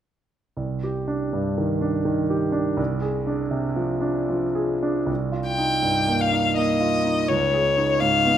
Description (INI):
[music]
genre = classical, impressionist duo for violin and grand piano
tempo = 82 BPM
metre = 3/4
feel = rubato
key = C minor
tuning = A4 = 440 Hz
[part]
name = clear concert grand piano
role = accompaniment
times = 0.6-8.4 s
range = C2 to Ab4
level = -22 LUFS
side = right 2 dB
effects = none
[part]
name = clear violin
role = melody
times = 5.5-8.4 s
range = Db5 to G5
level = -20 LUFS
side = left 4 dB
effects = none
[sound]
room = wet recital hall reverb, RT60 1.5 s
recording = none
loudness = -20 LUFS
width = side -10 dB against mid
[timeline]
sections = 0.6-5.1 A section; 5.1-8.4 B section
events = none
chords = 0.6 Cmadd9; 2.8 Fm6/C; 5.1 Cm7; 7.3 Dbadd9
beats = | 0.57 1.33 2.07 | 2.79 3.52 4.29 | 5.10 5.84 6.56 | 7.28 8.00